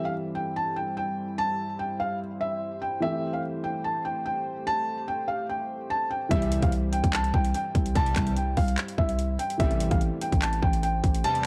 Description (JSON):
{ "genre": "hip hop, trap", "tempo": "146 BPM", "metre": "4/4", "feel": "half-time", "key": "C major", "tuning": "A4 = 440 Hz", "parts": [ { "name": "felt-muted upright piano", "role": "melody", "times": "0.0-11.5 s", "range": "E5 to A5", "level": "-31 LUFS", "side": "equal", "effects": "none" }, { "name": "dark concert grand piano", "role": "accompaniment", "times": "0.0-11.5 s", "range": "E3 to G4", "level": "-38 LUFS", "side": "equal", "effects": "none" }, { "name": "deep dark ambient pad", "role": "sustained chords", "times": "0.0-11.5 s", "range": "G3 to C5", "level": "-41 LUFS", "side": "equal", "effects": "chorus, built-in reverb" }, { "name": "analog synth brass", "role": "stabs", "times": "6.3-11.5 s", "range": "E2 to G3", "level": "-36 LUFS", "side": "equal", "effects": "chorus, digital delay" }, { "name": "growling 808-style bass", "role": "bass", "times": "6.3-11.2 s", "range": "A1 to C2", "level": "-30 LUFS", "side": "equal", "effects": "none" }, { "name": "trap drum kit", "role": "drums", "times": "6.3-11.4 s", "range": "handclaps, hi-hat, kick drum", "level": "-28 LUFS", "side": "equal", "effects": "none" } ], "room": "light reverb", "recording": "dark, warm production", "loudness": "-27 LUFS", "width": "mono", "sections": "0.0-11.5 A section", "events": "kick muted 11.2", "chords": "0.0 C; 3.0 Am7; 6.3 C; 9.6 Am7" }